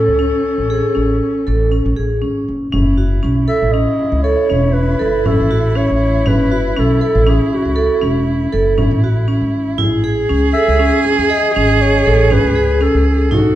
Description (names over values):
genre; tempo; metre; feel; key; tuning
contemporary instrumental, chamber music in an uneven meter; 119 BPM; 7/4; straight; unclear; A4 = 441 Hz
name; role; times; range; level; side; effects
warm clarinet; melody; 0.0-13.6 s; F#4 to E5; -19 LUFS; left 3 dB; none
rich cello; second line; 0.0-13.6 s; C#4 to G#4; -21 LUFS; right 4 dB; none
vibraphone with hard mallets; arpeggios; 0.0-13.5 s; C#4 to A4; -17 LUFS; right 1 dB; none
upright bass; bass; 0.0-13.6 s; E1 to E2; -17 LUFS; equal; none
frame drum; percussion; 2.7-13.6 s; none; -20 LUFS; equal; none
room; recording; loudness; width
wet recital hall reverb, RT60 1.5 s; dark, warm production; -12 LUFS; side -13 dB against mid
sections
0.0-2.7 A section; 2.7-13.6 B section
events
none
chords
0.0 Amaj7; 2.7 F#m7; 9.8 Amaj7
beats
0.20 0.71 1.21 1.72 2.22 | 2.73 3.23 3.74 4.24 4.75 5.25 5.75 | 6.26 6.76 7.27 7.77 8.27 8.78 9.28 | 9.79 10.29 10.79 11.30 11.80 12.30 12.81 | 13.31